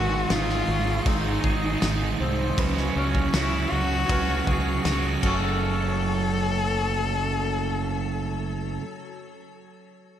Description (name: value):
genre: post-rock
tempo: 79 BPM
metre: 4/4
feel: straight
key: F# minor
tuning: A4 = 441 Hz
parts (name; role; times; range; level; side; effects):
- clear cello; melody; 0.0-8.8 s; C#4 to A4; -29 LUFS; left 4 dB; tape echo
- icy glass pad; sustained chords; 0.0-8.8 s; F#3 to C#6; -37 LUFS; left 4 dB; chorus, built-in reverb
- felt-muted upright piano; arpeggios; 0.0-6.0 s; F#4 to C#5; -39 LUFS; right 2 dB; slapback echo, tape echo
- twangy electric guitar; arpeggios; 0.0-8.8 s; G#2 to A4; -33 LUFS; left 3 dB; wide subtle chorus, slapback echo, tape echo
- overdriven semi-hollow guitar; riff; 0.0-8.8 s; F#2 to C#4; -28 LUFS; right 6 dB; spring reverb, slapback echo
- growling fingered electric bass; bass; 0.0-8.8 s; F#1 to C#2; -28 LUFS; equal; overdrive
- loose indie drum kit; drums; 0.3-5.4 s; crash cymbal, kick drum, snare drum; -29 LUFS; equal; none
room: moderate lush hall reverb, RT60 2.8 s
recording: big arena sound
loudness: -22 LUFS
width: side -10 dB against mid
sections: 0.0-5.6 A section; 5.6-8.6 B section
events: drum fill 5.2-5.6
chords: 0.0 G#7; 2.6 C#sus4; 5.2 F#m